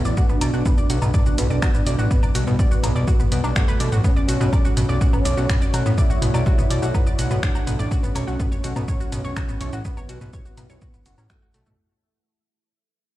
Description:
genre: melodic techno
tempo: 124 BPM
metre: 4/4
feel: straight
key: unclear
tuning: A4 = 440 Hz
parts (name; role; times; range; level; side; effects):
- expressive synth lead; melody; 0.0-11.7 s; A3 to E4; -29 LUFS; right 1 dB; ensemble chorus, sidechain pumping, ping-pong delay
- deep dark ambient pad; sustained chords; 0.0-11.7 s; G3 to C#5; -32 LUFS; equal; chorus, built-in reverb, sidechain pumping
- fat analog bass; bass; 0.0-11.8 s; F#1 to B1; -22 LUFS; equal; sidechain pumping
- analog pluck; arpeggios; 0.1-11.7 s; A3 to D6; -31 LUFS; equal; chorus, cassette tape, sidechain pumping, ping-pong delay
- punchy analog drum machine; drums; 0.1-11.8 s; finger snaps, hi-hat, shaker, toms, woodblock; -27 LUFS; equal; sidechain pumping on toms, small room ambience, sidechain pumping on perc, sidechain pumping on hats
- electronic kick drum; drums; 0.2-11.4 s; none; -20 LUFS; equal; small room ambience
room: little or no reverb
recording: played on a big sound system in a bare room, stone room reverb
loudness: -18 LUFS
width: side -15 dB against mid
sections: 0.0-11.8 A section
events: drop 0.0-11.8; fade-out 6.6-11.8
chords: 0.2 Em7; 4.0 Dmaj7; 7.9 A7

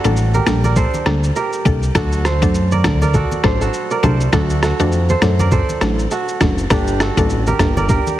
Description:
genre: afrobeats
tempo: 101 BPM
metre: 4/4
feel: swing 58% on 16ths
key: G harmonic minor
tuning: A4 = 437 Hz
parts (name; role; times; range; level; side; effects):
- mallet-like synth pluck; accompaniment; 0.0-7.9 s; F#3 to A4; -21 LUFS; left 2 dB; chorus
- kora; riff; 0.0-8.2 s; D4 to D5; -21 LUFS; right 4 dB; tape echo
- fat analog bass; bass; 0.0-8.0 s; F#1 to F#2; -17 LUFS; equal; none
- lo-fi sampler-style drum kit; drums; 0.0-8.2 s; kick drum, rim click, shaker; -20 LUFS; equal; overdrive
- congas; percussion; 0.1-8.2 s; none; -25 LUFS; left 2 dB; none
room: light reverb, small room reverb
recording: heavily compressed radio sound, multiband compression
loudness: -14 LUFS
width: side -13 dB against mid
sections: 0.0-8.2 A section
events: none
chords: 0.0 Gmadd9; 2.0 D; 6.7 Gmadd9

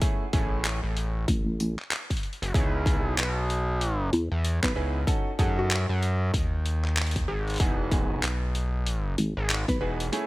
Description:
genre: glitch hop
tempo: 95 BPM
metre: 4/4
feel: swing 60% on 16ths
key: unclear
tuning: A4 = 442 Hz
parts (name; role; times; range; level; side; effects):
- bright baby grand piano; stabs; 0.0-10.3 s; A3 to A4; -33 LUFS; right 2 dB; sidechain pumping, digital delay
- boom bap sampler-style drum kit; drums; 0.0-10.3 s; handclaps, hi-hat; -31 LUFS; equal; none
- electronic kick drum; drums; 0.0-9.8 s; none; -26 LUFS; equal; none
- gritty driven synth bass; bass; 0.3-10.1 s; E1 to F#2; -27 LUFS; equal; none
- vowel-sweep wobble bass; bass; 1.3-4.7, 9.2-9.8 s; G#1 to E2; -26 LUFS; equal; chorus
- woody wave-folded pluck; melody; 4.6-9.9 s; F#4 to B4; -35 LUFS; equal; chorus, digital delay
room: digital ambience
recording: bright 1980s-style digital production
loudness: -24 LUFS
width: side -20 dB against mid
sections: 0.0-10.3 A section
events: none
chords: 0.0 F#m7 (rootless); 2.5 C#m9; 5.1 D#m7b5; 7.6 Emaj7

